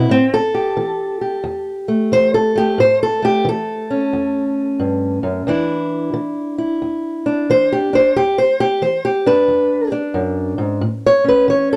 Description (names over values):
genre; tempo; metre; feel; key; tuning
acoustic country blues, solo or duo; 90 BPM; 4/4; swing 65% on 8ths; A mixolydian; A4 = 439 Hz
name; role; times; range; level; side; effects
fingerpicked steel-string acoustic guitar; solo; 0.0-11.8 s; E2 to C#5; -17 LUFS; equal; none
room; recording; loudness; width
little or no reverb; dry, close 1970s-style studio recording; -17 LUFS; mono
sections
0.0-11.8 A section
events
steel-string acoustic guitar solo 0.0-11.8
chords
0.1 A7; 5.5 E7(no3); 10.8 A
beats
| 0.10 0.78 1.45 2.12 | 2.79 3.46 4.13 4.80 | 5.47 6.14 6.81 7.48 | 8.15 8.82 9.48 10.15 | 10.82 11.48